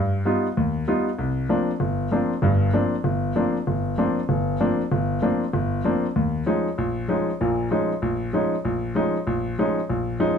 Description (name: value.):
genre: jazz.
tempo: 193 BPM.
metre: 4/4.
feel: swing 62% on 8ths.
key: unclear.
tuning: A4 = 441 Hz.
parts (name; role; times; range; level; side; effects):
clear concert grand piano; solo; 0.0-10.4 s; G1 to F4; -21 LUFS; equal; none.
room: moderate club reverb, RT60 0.6 s.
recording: none.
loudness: -21 LUFS.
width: side -7 dB against mid.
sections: 0.0-1.2 A section; 1.2-10.4 B section.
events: none.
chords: 0.0 Gaug7; 1.2 C9sus4; 6.2 Eb9sus4.